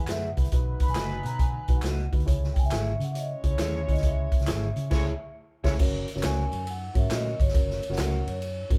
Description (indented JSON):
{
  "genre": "uptempo 1960s-style soul",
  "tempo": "137 BPM",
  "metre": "4/4",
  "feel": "swing 66% on 8ths",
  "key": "F# mixolydian",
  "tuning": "A4 = 440 Hz",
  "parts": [
    { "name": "vibraphone with soft mallets", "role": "melody", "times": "0.0-8.7 s", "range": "C#5 to B5", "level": "-37 LUFS", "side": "equal", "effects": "none" },
    { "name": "warm horn section", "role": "second line", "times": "0.0-5.7 s", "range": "F#3 to C#5", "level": "-41 LUFS", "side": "equal", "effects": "none" },
    { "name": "dark upright piano", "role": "accompaniment", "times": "0.0-8.8 s", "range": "C#4 to C#5", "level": "-39 LUFS", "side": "equal", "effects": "none" },
    { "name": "vintage muted fingered electric bass", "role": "bass", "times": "0.0-8.8 s", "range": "F#1 to C#3", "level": "-32 LUFS", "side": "equal", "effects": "none" },
    { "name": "electric guitar through a small old amp", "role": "stabs", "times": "0.1-8.2 s", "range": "E4 to E5", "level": "-40 LUFS", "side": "equal", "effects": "spring reverb" },
    { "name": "swinging big-band drum kit", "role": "drums", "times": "0.1-8.8 s", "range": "crash cymbal, hi-hat, kick drum, ride cymbal, snare drum", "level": "-29 LUFS", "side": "equal", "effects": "none" },
    { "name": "handclaps and tambourine", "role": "percussion", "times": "0.1-8.8 s", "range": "none", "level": "-44 LUFS", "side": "equal", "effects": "none" }
  ],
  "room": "light reverb",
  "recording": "band playing live in one room",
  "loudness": "-27 LUFS",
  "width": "mono",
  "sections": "0.0-5.8 A section; 5.8-8.8 B section",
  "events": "band accent 4.9-5.8",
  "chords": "0.0 E; 0.5 B; 2.3 C#m; 5.8 F#",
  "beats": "0.09 | 0.53 0.96 1.40 1.84 | 2.28 2.72 3.16 3.60 | 4.04 4.48 4.92 5.35 | 5.79 6.23 6.67 7.11 | 7.54 7.98 8.42"
}